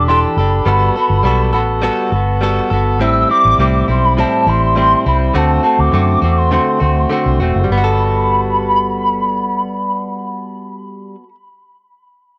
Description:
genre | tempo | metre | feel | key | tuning
indie pop, bedroom pop | 102 BPM | 4/4 | straight | G major | A4 = 440 Hz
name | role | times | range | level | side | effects
hollow clarinet-like synth lead | melody | 0.0-10.8 s | A5 to E6 | -19 LUFS | equal | ensemble chorus
direct-recorded clean electric guitar | accompaniment | 0.0-11.3 s | A2 to A4 | -19 LUFS | equal | subtle chorus, warbly pitch drift, cassette tape
vintage muted fingered electric bass | bass | 0.0-11.2 s | E1 to F#2 | -18 LUFS | equal | none
room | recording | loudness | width
light reverb | home recording on cassette | -14 LUFS | mono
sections
0.0-7.7 A section; 7.7-10.0 B section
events
none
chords
0.0 Em11; 0.7 Gmaj9; 3.0 Am7; 5.3 D7; 7.7 Gmaj9

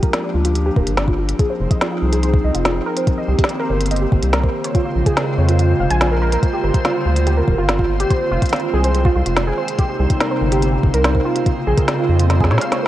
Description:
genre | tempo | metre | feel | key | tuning
IDM | 143 BPM | 4/4 | straight | G phrygian | A4 = 440 Hz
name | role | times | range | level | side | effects
warbly tape-like pad | sustained chords | 0.0-12.9 s | C3 to Ab4 | -23 LUFS | equal | chorus, built-in reverb, vintage 12-bit sampler grit, shimmer reverb
warbly dusty pluck | arpeggios | 0.0-12.9 s | F4 to Ab5 | -22 LUFS | right 2 dB | wide subtle chorus, digital delay, shimmer reverb
electronic kick drum | drums | 0.0-12.5 s | none | -17 LUFS | equal | none
organic electronic drum kit | drums | 0.0-12.8 s | hi-hat, snare drum | -23 LUFS | equal | digital delay
backwards swelling texture | texture | 0.3-12.9 s | C4 to C5 | -29 LUFS | left 1 dB | built-in reverb, shimmer reverb
round analog bass | bass | 0.3-12.6 s | D1 to Bb2 | -17 LUFS | equal | tube saturation
room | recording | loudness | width
moderate huge ambient reverb, RT60 5.0 s | worn, warbling old tape, cassette tape, warbly pitch drift | -15 LUFS | side -14 dB against mid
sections
0.0-12.9 A section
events
drum fill 12.3-12.9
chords
0.0 Gm7; 1.4 Fm7; 2.9 Cm7; 4.5 Bbm7; 6.4 Gm7; 8.1 Fm7; 9.6 Cm7; 11.3 Bbm7

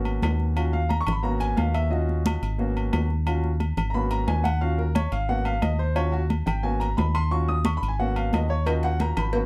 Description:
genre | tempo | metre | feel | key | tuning
latin, salsa | 178 BPM | 4/4 | straight | Eb minor | A4 = 440 Hz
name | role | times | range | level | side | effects
clear concert grand piano | accompaniment | 0.0-9.5 s | Bb3 to Eb6 | -30 LUFS | equal | none
deep dub fingered electric bass | bass | 0.0-9.5 s | Ab1 to Eb2 | -27 LUFS | equal | none
agogo bells and timbales | percussion | 0.1-9.3 s | none | -36 LUFS | equal | none
congas | percussion | 0.1-9.5 s | none | -32 LUFS | equal | none
cowbell | percussion | 8.7-9.5 s | none | -32 LUFS | equal | none
room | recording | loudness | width
light reverb | dark, warm production | -25 LUFS | mono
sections
0.0-9.5 A section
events
grand piano solo 0.0-9.5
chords
0.0 Abm11; 0.6 Ebm9; 1.2 Abm11; 1.9 Ebm9; 2.6 Abm11; 3.3 Ebm9; 3.9 Abm11; 4.6 Ebm9; 5.3 Abm11; 6.0 Ebm9; 6.6 Abm11; 7.3 Ebm9; 8.0 Abm11

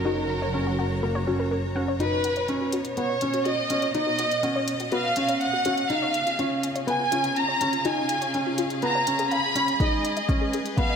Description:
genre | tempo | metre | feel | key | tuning
piano and strings electronica | 123 BPM | 4/4 | straight | unclear | A4 = 435 Hz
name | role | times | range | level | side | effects
dark studio violin section | melody | 0.0-11.0 s | A#4 to B5 | -26 LUFS | equal | none
clear studio string section | sustained chords | 0.0-11.0 s | B2 to A#5 | -33 LUFS | equal | sidechain pumping
warbly dusty pluck | arpeggios | 0.0-10.9 s | E#4 to E#6 | -33 LUFS | left 4 dB | chorus, sidechain pumping, tape echo
felt-muted upright piano | riff | 0.0-10.9 s | A#3 to D#4 | -28 LUFS | equal | tape echo
warm studio double bass section | bass | 0.0-2.0 s | F#1 | -30 LUFS | equal | sidechain pumping
electronic hi-hat | drums | 2.0-10.9 s | none | -35 LUFS | left 3 dB | studio reverb
electronic kick drum | drums | 9.8-10.9 s | none | -24 LUFS | equal | overdrive, studio reverb
room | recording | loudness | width
moderate concert hall reverb, RT60 2.2 s | none | -22 LUFS | side -7 dB against mid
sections
0.0-2.0 A section; 2.0-11.0 B section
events
build-up 2.0-11.0; filter sweep on synth arpeggio sound 2.0-11.0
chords
0.0 F#; 2.0 Badd9; 5.9 C#; 9.8 G#m

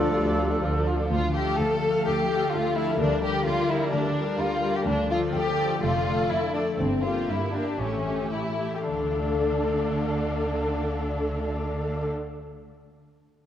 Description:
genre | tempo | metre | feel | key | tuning
classical, dramatic, fast romantic movement for symphony orchestra | 107-130 BPM | 4/4 | rubato | D minor | A4 = 441 Hz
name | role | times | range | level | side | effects
rich symphonic violin section | melody | 0.0-12.1 s | D5 to F5 | -42 LUFS | left 2 dB | none
clear oboe | second line | 0.0-0.8 s | A4 | -34 LUFS | right 1 dB | none
mellow hollow silver concert flute | second line | 0.0-0.8 s | A4 | -34 LUFS | left 2 dB | none
rich studio violin section | second line | 0.0-12.1 s | C4 to A4 | -28 LUFS | left 1 dB | none
warm clarinet | second line | 0.0-0.8 s | F4 | -38 LUFS | left 1 dB | none
warm symphonic viola section | accompaniment | 0.0-12.1 s | F3 to Bb4 | -30 LUFS | equal | none
mellow French horn section | sustained chords | 0.0-0.8 s | A3 to F4 | -37 LUFS | left 3 dB | none
warm trombone section | sustained chords | 0.0-0.8 s | D3 to F3 | -38 LUFS | right 2 dB | none
concert harp | arpeggios | 0.0-12.8 s | F2 to F5 | -30 LUFS | left 5 dB | none
mellow trumpet | stabs | 0.0-0.8 s | D4 | -33 LUFS | equal | none
clear tuba | bass | 0.0-1.0 s | D2 | -35 LUFS | right 1 dB | none
rich symphonic double bass section | bass | 0.0-12.1 s | F1 to D2 | -32 LUFS | right 2 dB | none
warm symphonic cello section | bass | 0.0-12.1 s | D2 to D3 | -34 LUFS | right 2 dB | none
room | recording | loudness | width
wet concert hall reverb, RT60 2.3 s | worn, warbling old tape, cassette tape, warbly pitch drift | -23 LUFS | side -10 dB against mid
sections
0.0-1.1 A section; 1.1-8.9 B section; 8.9-13.0 C section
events
slowing down 3.9-8.9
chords
0.0 Dm; 3.0 Gm/D; 4.9 Dm; 5.8 Dm/F; 6.8 Edim/G; 7.8 A7; 8.9 Dm

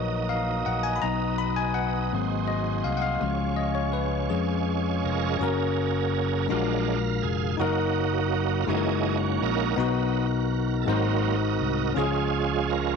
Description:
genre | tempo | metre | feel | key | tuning
slow gospel | 55 BPM (dotted quarters) | 6/8 | straight | F# major | A4 = 443 Hz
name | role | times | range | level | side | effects
bell-like tine electric piano | accompaniment | 0.0-13.0 s | G#2 to B5 | -27 LUFS | left 9 dB | medium stereo tremolo
bright tonewheel organ | sustained chords | 0.0-13.0 s | E3 to E#5 | -29 LUFS | right 12 dB | slow rotary speaker, overdrive, chorus vibrato
glass harmonica | sustained chords | 0.0-5.4 s | F#4 to D#6 | -35 LUFS | right 2 dB | none
fingered electric bass | bass | 0.0-13.0 s | E#1 to E#2 | -29 LUFS | right 2 dB | none
room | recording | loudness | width
moderate echo chamber reverb, RT60 2.0 s | 1960s-style stereo with parts hard left and right, nothing above 10.9 kHz | -23 LUFS | side -5 dB against mid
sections
0.0-5.4 A section; 5.4-13.0 B section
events
tine electric piano solo 0.0-5.4; tonewheel organ solo 5.4-13.0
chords
0.0 D#m; 1.0 B; 2.1 G#7; 3.2 C#; 5.4 F#; 6.5 A#7b13; 7.6 D#m/F#; 8.7 F#13; 9.8 B; 10.9 G#7; 12.0 C#

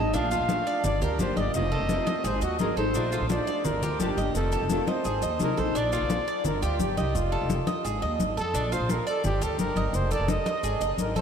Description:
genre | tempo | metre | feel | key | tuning
latin, Cuban son and guajira | 172 BPM | 4/4 | straight | Bb major | A4 = 441 Hz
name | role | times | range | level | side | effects
breathy trumpet | melody | 0.0-11.2 s | F4 to F5 | -30 LUFS | equal | tape echo
nylon-string guitar | accompaniment | 0.0-5.8 s | C3 to Ab4 | -32 LUFS | left 2 dB | lush chorus
Cuban tres | arpeggios | 0.0-11.2 s | D4 to Eb5 | -30 LUFS | right 2 dB | none
upright bass | bass | 0.0-11.2 s | F1 to F2 | -29 LUFS | equal | none
congas | percussion | 0.1-11.2 s | none | -32 LUFS | left 3 dB | none
maracas | percussion | 0.1-11.2 s | none | -42 LUFS | left 8 dB | none
room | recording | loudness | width
wet huge ambient reverb, RT60 7.3 s | dreamy mix soaked in reverb | -24 LUFS | side -7 dB against mid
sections
0.0-5.7 A section; 5.7-11.2 A section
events
none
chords
0.1 Bbmaj7; 0.8 Gm7; 1.5 F7; 2.2 Ab7; 2.9 Bbmaj7; 3.6 Gm7; 4.3 F7; 5.0 Ab7; 5.7 Bb; 6.4 G5; 7.1 F7; 7.8 Ab5; 8.5 Bb; 9.2 Gm; 9.9 F7; 10.6 Ab5

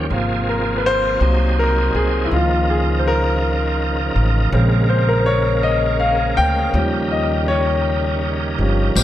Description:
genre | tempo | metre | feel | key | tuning
slow gospel | 54 BPM (dotted quarters) | 6/8 | straight | Ab major | A4 = 440 Hz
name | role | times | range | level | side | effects
clear concert grand piano | accompaniment | 0.0-9.0 s | C3 to G5 | -19 LUFS | left 2 dB | none
bright tonewheel organ | sustained chords | 0.0-9.0 s | Db3 to Bb4 | -23 LUFS | right 4 dB | fast rotary speaker, overdrive, chorus vibrato
upright bass | bass | 0.0-9.0 s | G1 to Eb2 | -19 LUFS | equal | none
tambourine | percussion | 9.0 s | none | -18 LUFS | left 10 dB | none
room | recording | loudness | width
light reverb, studio reverb | none | -15 LUFS | side -12 dB against mid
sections
0.1-9.0 A section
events
grand piano solo 0.1-9.0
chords
0.1 Ab69; 1.2 Ab7/C; 2.3 Db69; 4.5 Bbm9; 6.7 Eb7

